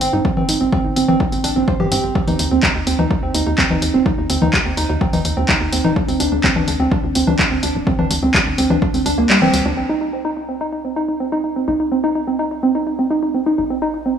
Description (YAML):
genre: melodic techno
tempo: 126 BPM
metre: 4/4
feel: straight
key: C minor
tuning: A4 = 439 Hz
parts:
  - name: woody wave-folded pluck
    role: arpeggios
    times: 0.0-14.1 s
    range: G3 to C5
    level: -18 LUFS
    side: right 2 dB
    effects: chorus, sidechain pumping, analog delay
  - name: tight sequencer bass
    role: bass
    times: 0.0-14.2 s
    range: D1 to Ab2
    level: -23 LUFS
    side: equal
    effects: sidechain pumping
  - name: punchy analog drum machine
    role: drums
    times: 0.0-9.6 s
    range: congas, handclaps, hi-hat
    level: -19 LUFS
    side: left 2 dB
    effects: none
  - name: electronic kick drum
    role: drums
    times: 0.2-8.9 s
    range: none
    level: -21 LUFS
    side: equal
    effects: overdrive
room: light reverb, digital ambience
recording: dry, gritty hardware recording, small room ambience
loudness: -15 LUFS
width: side -8 dB against mid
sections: 0.0-9.8 A section; 9.8-14.2 B section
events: kick drops out 9.3-9.8; band accent 9.3; filter sweep on synth pluck 9.8-14.2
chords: 0.0 Ab; 2.2 Cm/Eb; 6.0 N.C.; 9.8 Cm; 13.6 Ab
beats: | 0.25 0.72 1.20 1.68 | 2.15 2.63 3.11 3.58 | 4.06 4.54 5.01 5.49 | 5.96 6.44 6.92 7.39 | 7.87 8.34 8.82 9.30 | 9.77 10.25 10.72 11.20 | 11.68 12.15 12.63 13.11 | 13.58 14.06